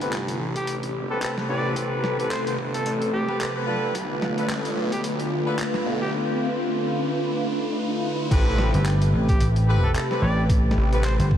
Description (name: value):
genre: glitch hop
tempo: 110 BPM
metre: 4/4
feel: swing 57% on 16ths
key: A minor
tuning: A4 = 439 Hz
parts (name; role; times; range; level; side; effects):
- warm analog pad; sustained chords; 0.0-11.4 s; C3 to B4; -27 LUFS; equal; chorus, sidechain pumping
- clear horn section; stabs; 0.0-11.0 s; B3 to B4; -31 LUFS; left 1 dB; vintage 12-bit sampler grit, sidechain pumping, low-pass filter, analog delay
- phased detuned saw bass; bass; 0.0-11.2 s; G1 to B1; -28 LUFS; equal; phaser, tube saturation, high-pass filter
- boom bap sampler-style drum kit; drums; 0.0-11.3 s; crash cymbal, handclaps, hi-hat, snare drum; -34 LUFS; equal; small room ambience
- riser; sound effects; 0.0-8.3 s; none; -33 LUFS; left 1 dB; none
- warm trumpet; melody; 0.6-11.3 s; G4 to D5; -32 LUFS; equal; analog delay
- electronic kick drum; drums; 0.6-5.0, 8.3-11.4 s; none; -21 LUFS; equal; high-pass filter on kick, small room ambience
- vintage slap bass; bass; 8.7-11.4 s; G1 to A1; -20 LUFS; equal; none
room: moderate huge ambient reverb, RT60 8.3 s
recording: dreamy mix soaked in reverb, vinyl crackle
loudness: -21 LUFS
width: side -10 dB against mid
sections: 0.0-8.3 A section; 8.3-11.4 B section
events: build-up 0.0-8.3; riser 0.0-8.3; filter sweep on analog synth pad 0.0-8.3; drop 8.3-11.4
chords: 0.0 Am9; 3.9 Bm7b5; 8.3 Am9